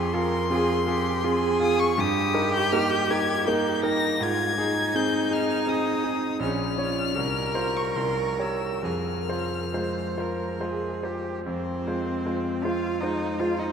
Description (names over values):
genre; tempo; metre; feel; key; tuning
classical, slow romantic movement for piano trio; 65-83 BPM; 3/4; rubato; F minor; A4 = 441 Hz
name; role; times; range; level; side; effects
rich violin; melody; 0.0-13.7 s; C5 to Bb6; -30 LUFS; left 5 dB; none
rich cello; second line; 0.0-13.7 s; C4 to C5; -28 LUFS; right 2 dB; none
clear concert grand piano; accompaniment; 0.0-13.7 s; Bb1 to Db5; -26 LUFS; equal; none
room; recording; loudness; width
wet cathedral reverb, RT60 6.9 s; in a vast, echoing space; -23 LUFS; side -7 dB against mid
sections
0.0-11.5 A section; 11.5-13.7 B section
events
none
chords
0.0 Fm; 2.0 Eb/G; 4.2 Ab; 6.4 Bbm; 7.2 F5/C; 8.0 C7b9; 8.8 Fm